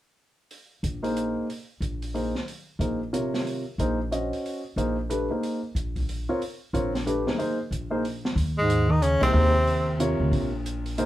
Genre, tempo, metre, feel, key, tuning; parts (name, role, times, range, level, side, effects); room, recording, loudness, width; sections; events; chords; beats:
modal jazz; 183 BPM; 3/4; swing 62% on 8ths; A4 = 440 Hz
open jazz drum kit; drums; 0.5-11.1 s; hi-hat, kick drum, ride cymbal, snare drum; -34 LUFS; equal
upright bass; bass; 0.8-11.1 s; Bb1 to Eb2; -27 LUFS; equal
warm upright piano; accompaniment; 1.0-11.1 s; C3 to Eb5; -27 LUFS; equal
bright tenor saxophone; melody; 8.6-10.2 s; Ab3 to Eb4; -23 LUFS; equal
mellow bass clarinet; second line; 8.6-10.2 s; Ab2 to Eb3; -28 LUFS; right 1 dB
moderate club reverb, RT60 0.5 s; heard from further back in the room; -24 LUFS; side -14 dB against mid
0.5-8.4 A section; 8.4-11.1 B section
band accent 9.2
0.5 Eb7sus4; 8.4 Eb9sus4
| 0.50 0.83 1.16 | 1.49 1.82 2.15 | 2.47 2.80 3.13 | 3.46 3.79 4.11 | 4.44 4.77 5.10 | 5.42 5.75 6.08 | 6.41 6.73 7.06 | 7.39 7.71 8.04 | 8.37 8.69 9.02 | 9.35 9.67 10.00 | 10.32 10.65 10.97